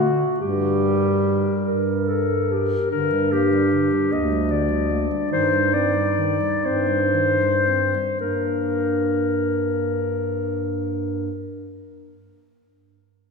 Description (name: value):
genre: classical, lyrical piece for single-reed quartet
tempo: 36-52 BPM (dotted quarters)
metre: 6/8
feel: rubato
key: G minor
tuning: A4 = 440 Hz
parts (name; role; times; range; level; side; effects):
- clear clarinet; melody; 0.0-11.3 s; F#4 to Eb5; -23 LUFS; left 5 dB; none
- dark clarinet; second line; 0.0-11.3 s; D4 to Bb4; -25 LUFS; right 2 dB; none
- dark clarinet; accompaniment; 0.0-11.3 s; D3 to C4; -29 LUFS; left 2 dB; none
- mellow bass clarinet; bass; 0.0-11.3 s; D2 to D3; -25 LUFS; right 3 dB; none
room: wet church reverb, RT60 2.9 s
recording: minimal, uncompressed stereo recording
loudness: -19 LUFS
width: side -4 dB against mid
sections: 0.0-2.9 A section; 2.9-8.2 B section; 8.2-11.2 C section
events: slowing down 1.6-8.2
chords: 0.4 Gm; 5.3 Cm/G; 8.2 Gm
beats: | 0.39 1.65 | 2.91 4.11 | 5.31 6.64 | 8.20 9.67